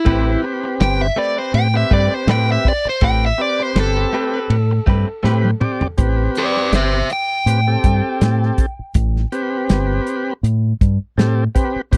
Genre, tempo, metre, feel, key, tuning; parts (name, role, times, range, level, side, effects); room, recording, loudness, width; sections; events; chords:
straight-eighth soul blues; 81 BPM; 4/4; swing 56% on 16ths; A minor; A4 = 441 Hz
crunchy overdriven guitar; melody; 0.0-9.3 s; E4 to G5; -23 LUFS; equal
tonewheel organ; accompaniment; 0.1-12.0 s; C4 to D5; -24 LUFS; equal; overdrive, slow rotary speaker
direct-recorded clean electric guitar; stabs; 0.1-5.9 s; A3 to B4; -27 LUFS; equal
fingered electric bass; bass; 0.1-12.0 s; G1 to A2; -19 LUFS; equal
warm soul drum kit; drums; 0.1-12.0 s; hi-hat, kick drum, ride cymbal, snare drum, toms; -20 LUFS; equal
little or no reverb; dry, close 1970s-style studio recording; -17 LUFS; mono
0.0-6.0 A section; 6.0-12.0 B section
overdriven electric guitar solo 0.0-6.0; drum fill 5.2-6.0
0.1 Am9